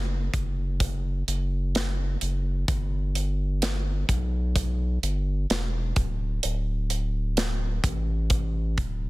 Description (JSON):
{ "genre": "pop ballad", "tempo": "64 BPM", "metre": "4/4", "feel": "straight", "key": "D major", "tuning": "A4 = 436 Hz", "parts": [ { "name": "saturated sub bass", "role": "bass", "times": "0.0-9.1 s", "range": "D1 to B1", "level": "-26 LUFS", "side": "equal", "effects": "none" }, { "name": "modern studio drum kit", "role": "drums", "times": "0.3-9.0 s", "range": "hi-hat, kick drum, snare drum", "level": "-28 LUFS", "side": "equal", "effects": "none" } ], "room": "little or no reverb", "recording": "dense, heavily limited modern master", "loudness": "-24 LUFS", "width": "side -20 dB against mid", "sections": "0.0-9.1 A section", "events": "none", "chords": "none", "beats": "0.81 1.75 | 2.68 3.62 4.56 5.50 | 6.43 7.37 8.31" }